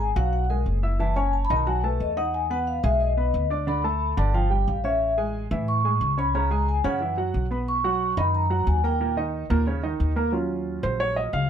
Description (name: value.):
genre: jazz.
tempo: 180 BPM.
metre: 4/4.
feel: straight.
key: unclear.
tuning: A4 = 440 Hz.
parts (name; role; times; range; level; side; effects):
vibraphone with soft mallets; melody; 0.0-9.2 s; A#4 to C#6; -25 LUFS; left 1 dB; none.
warm upright piano; accompaniment; 0.0-11.5 s; A#2 to E6; -28 LUFS; right 3 dB; none.
upright bass; bass; 0.0-11.5 s; F#1 to A2; -25 LUFS; equal; none.
room: little or no reverb.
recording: close, detailed microphones.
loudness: -22 LUFS.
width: side -8 dB against mid.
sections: 0.0-10.3 A section; 10.3-11.5 A section.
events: vibraphone solo 0.0-10.3; upright piano solo 10.3-11.5.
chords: 0.0 G#m7; 1.0 F#5; 1.7 B7; 2.3 Emaj7; 3.7 D5; 4.3 Gsus2; 5.0 Amaj7; 6.3 C#5; 7.0 Bsus4; 7.7 Bmaj7; 9.0 D#5; 10.3 Ebm7.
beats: 0.33 0.67 | 1.00 1.33 1.67 2.00 | 2.34 2.67 3.01 3.34 | 3.67 4.01 4.34 4.67 | 5.01 5.34 5.68 6.01 | 6.34 6.68 7.01 7.34 | 7.67 8.01 8.34 8.67 | 9.01 9.34 9.67 10.00 | 10.34 10.67 11.00 11.34.